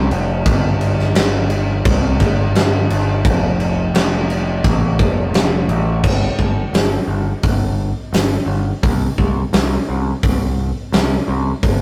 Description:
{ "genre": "rock, shoegaze and dream pop", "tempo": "86 BPM", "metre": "4/4", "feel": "straight", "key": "unclear", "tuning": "A4 = 445 Hz", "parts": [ { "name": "growling picked electric bass", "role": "bass", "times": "0.0-11.8 s", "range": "F1 to C2", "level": "-20 LUFS", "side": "equal", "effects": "overdrive" }, { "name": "huge arena drum kit", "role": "drums", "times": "0.1-11.8 s", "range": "crash cymbal, hi-hat, kick drum, snare drum", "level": "-19 LUFS", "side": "equal", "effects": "none" } ], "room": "little or no reverb", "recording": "rough rehearsal-room recording, tube saturation", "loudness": "-17 LUFS", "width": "mono", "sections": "0.0-6.0 A section; 6.0-11.8 B section", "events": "none", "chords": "none", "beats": "| 0.45 1.15 1.85 2.55 | 3.25 3.94 4.64 5.34 | 6.04 6.74 7.44 8.13 | 8.83 9.53 10.23 10.93 | 11.62" }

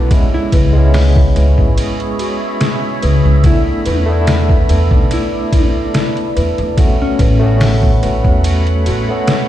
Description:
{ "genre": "trip hop", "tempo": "72 BPM", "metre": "4/4", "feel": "straight", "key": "unclear", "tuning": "A4 = 440 Hz", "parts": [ { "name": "barky tine electric piano", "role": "accompaniment", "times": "0.0-9.5 s", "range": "G#3 to F#4", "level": "-20 LUFS", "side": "equal", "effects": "tremolo, tape echo" }, { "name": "deep dark ambient pad", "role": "sustained chords", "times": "0.0-9.5 s", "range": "G#4 to B5", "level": "-24 LUFS", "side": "right 1 dB", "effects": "chorus, built-in reverb" }, { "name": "large celesta", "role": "arpeggios", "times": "0.0-9.5 s", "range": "E4 to B4", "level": "-24 LUFS", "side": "left 2 dB", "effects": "vintage 12-bit sampler grit, tape echo" }, { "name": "upright bass", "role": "bass", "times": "0.0-9.1 s", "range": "G#1 to E2", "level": "-13 LUFS", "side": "equal", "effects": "tube saturation" }, { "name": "trip hop sampler-style drum kit", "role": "drums", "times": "0.1-9.5 s", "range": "hi-hat, kick drum, ride cymbal, snare drum", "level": "-15 LUFS", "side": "equal", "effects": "none" }, { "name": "mellow electric guitar", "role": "melody", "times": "0.3-7.6 s", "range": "C#4 to E4", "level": "-24 LUFS", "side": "left 1 dB", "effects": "dub echo" } ], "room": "little or no reverb", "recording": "played on a big sound system in a bare room, large studio reverb", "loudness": "-11 LUFS", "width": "side -12 dB against mid", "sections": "0.0-9.5 A section", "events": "none", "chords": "0.1 C#m7; 3.4 E7sus4; 6.8 A69", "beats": "| 0.11 0.94 1.78 2.61 | 3.44 4.28 5.11 5.95 | 6.78 7.61 8.45 9.28" }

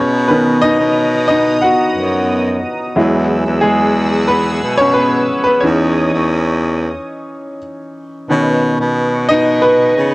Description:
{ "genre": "pop", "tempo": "90 BPM", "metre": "4/4", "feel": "straight", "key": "B major", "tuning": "A4 = 440 Hz", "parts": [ { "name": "bright upright piano", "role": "accompaniment", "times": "0.0-10.1 s", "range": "D#3 to F#5", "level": "-14 LUFS", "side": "equal", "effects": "cassette tape" }, { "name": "sweeping resonant pad", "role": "sustained chords", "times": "0.0-10.1 s", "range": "B3 to E6", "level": "-22 LUFS", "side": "right 1 dB", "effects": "chorus, cassette tape" }, { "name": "breathy baritone saxophone", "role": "bass", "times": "0.0-10.1 s", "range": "E2 to C#3", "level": "-16 LUFS", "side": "equal", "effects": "none" } ], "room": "light reverb", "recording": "home recording on cassette", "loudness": "-11 LUFS", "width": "side -21 dB against mid", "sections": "0.0-8.3 A section; 8.3-10.1 B section", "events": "upright piano solo 0.0-8.3, 8.3-10.1; stop 7.0-8.3", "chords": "0.0 Bmaj7; 3.0 Eadd9; 5.6 C#madd9/E; 8.3 Badd9", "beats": "| 0.30 0.96 1.63 2.30 | 2.96 3.63 4.30 4.96 | 5.63 6.30 6.96 7.63 | 8.30 8.96 9.63" }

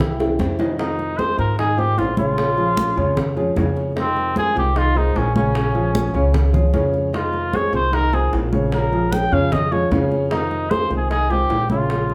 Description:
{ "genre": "latin, Cuban son and guajira", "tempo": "151 BPM", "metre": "4/4", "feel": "straight", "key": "F minor", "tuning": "A4 = 441 Hz", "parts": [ { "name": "trumpet with cup mute", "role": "melody", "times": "0.0-12.1 s", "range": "C4 to G5", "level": "-24 LUFS", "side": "equal", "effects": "none" }, { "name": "nylon-string guitar", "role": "accompaniment", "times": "0.0-12.1 s", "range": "C3 to F4", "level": "-29 LUFS", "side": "equal", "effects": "none" }, { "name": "dark grand piano", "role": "arpeggios", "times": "0.0-12.1 s", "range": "Db3 to Eb5", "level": "-26 LUFS", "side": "equal", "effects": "none" }, { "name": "upright bass", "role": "bass", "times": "0.0-12.1 s", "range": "Bb1 to Ab2", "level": "-25 LUFS", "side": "equal", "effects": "none" }, { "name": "bongos", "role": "percussion", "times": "0.0-12.1 s", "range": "none", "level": "-30 LUFS", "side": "equal", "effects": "none" }, { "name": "congas", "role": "percussion", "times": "0.0-12.1 s", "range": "none", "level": "-28 LUFS", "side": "equal", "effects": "none" } ], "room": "moderate large studio reverb, RT60 0.9 s", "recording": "band playing live in one room", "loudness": "-19 LUFS", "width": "mono", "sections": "0.8-12.1 A section", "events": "drum fill 0.2-0.8", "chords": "0.0 C; 0.8 Fm7; 2.4 Bbm7; 4.0 Fm7; 5.5 Bbm7; 7.1 Fm7; 8.7 Bbm7; 10.3 Fm7", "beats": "0.00 0.39 | 0.79 1.19 1.58 1.98 | 2.38 2.77 3.17 3.57 | 3.96 4.36 4.76 5.15 | 5.55 5.95 6.34 6.74 | 7.13 7.53 7.93 8.32 | 8.72 9.12 9.52 9.91 | 10.31 10.71 11.10 11.50 | 11.90" }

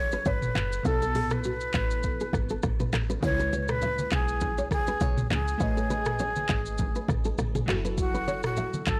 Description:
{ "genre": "afrobeats", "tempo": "101 BPM", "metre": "4/4", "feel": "swing 55% on 16ths", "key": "C# minor", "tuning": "A4 = 442 Hz", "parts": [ { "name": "breathy jazz flute", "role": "melody", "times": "0.0-9.0 s", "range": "F#4 to C#5", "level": "-34 LUFS", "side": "equal", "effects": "none" }, { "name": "glassy digital keys", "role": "accompaniment", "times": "0.0-9.0 s", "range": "B2 to F#5", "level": "-38 LUFS", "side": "equal", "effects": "chorus" }, { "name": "woody log drum bass", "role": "bass", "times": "0.0-9.0 s", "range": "F#1 to C#2", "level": "-33 LUFS", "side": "equal", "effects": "none" }, { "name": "nylon-string guitar", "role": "riff", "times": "0.1-8.8 s", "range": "F#4 to E5", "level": "-38 LUFS", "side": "equal", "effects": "none" }, { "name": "afro-pop drum kit", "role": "drums", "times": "0.1-9.0 s", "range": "handclaps, hi-hat, kick drum, rim click, shaker, toms", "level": "-33 LUFS", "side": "equal", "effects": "soft clipping on snare" }, { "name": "congas", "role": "percussion", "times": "3.5-8.9 s", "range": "none", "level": "-39 LUFS", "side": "equal", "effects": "none" } ], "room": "light reverb", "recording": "blown-out, overdriven recording, overdrive", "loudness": "-28 LUFS", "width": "mono", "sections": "0.0-9.0 A section", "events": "none", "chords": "0.0 F#m9; 0.9 B7sus4; 3.2 C#m7; 5.6 Amaj9#11; 7.7 F#m7", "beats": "0.26 | 0.85 1.45 2.04 2.63 | 3.23 3.82 4.42 5.01 | 5.60 6.20 6.79 7.39 | 7.98 8.57" }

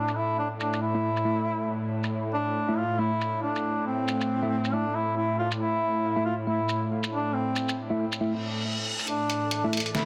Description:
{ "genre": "deep dubstep", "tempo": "138 BPM", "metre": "4/4", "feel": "swing 59% on 16ths, half-time", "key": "A minor", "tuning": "A4 = 440 Hz", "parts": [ { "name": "warm duduk", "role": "melody", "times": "0.0-10.1 s", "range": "C4 to F4", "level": "-31 LUFS", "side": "equal", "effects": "dub echo" }, { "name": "bowed-like drone", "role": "sustained chords", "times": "0.0-10.1 s", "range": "A2 to E3", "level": "-34 LUFS", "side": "equal", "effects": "built-in reverb" }, { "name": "trip hop sampler-style drum kit", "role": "drums", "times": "0.1-10.1 s", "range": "hi-hat, shaker, snare drum", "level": "-34 LUFS", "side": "equal", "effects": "low-pass filter on cymbals, studio reverb, low-pass filter on perc, low-pass filter on hats, low-pass filter on snare" }, { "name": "mellow tine electric piano", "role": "stabs", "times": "0.9-10.1 s", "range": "A3 to E5", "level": "-35 LUFS", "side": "equal", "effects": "vintage 12-bit sampler grit, low-pass filter, dub echo" }, { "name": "reverse cymbal and riser", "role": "sound effects", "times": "8.4-10.1 s", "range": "none", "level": "-36 LUFS", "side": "equal", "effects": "none" }, { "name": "wind-like tuned noise texture", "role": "texture", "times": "9.4-10.1 s", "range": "A4", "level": "-42 LUFS", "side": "equal", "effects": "built-in reverb" } ], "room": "light reverb", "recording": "dense, heavily limited modern master", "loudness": "-28 LUFS", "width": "mono", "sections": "0.0-9.1 A section", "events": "reverse cymbal 8.4-9.1", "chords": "0.0 A5", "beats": "| 0.38 0.82 1.25 1.69 | 2.12 2.56 2.99 3.43 | 3.86 4.30 4.73 5.17 | 5.60 6.04 6.47 6.91 | 7.34 7.78 8.21 8.64 | 9.08 9.52 9.95" }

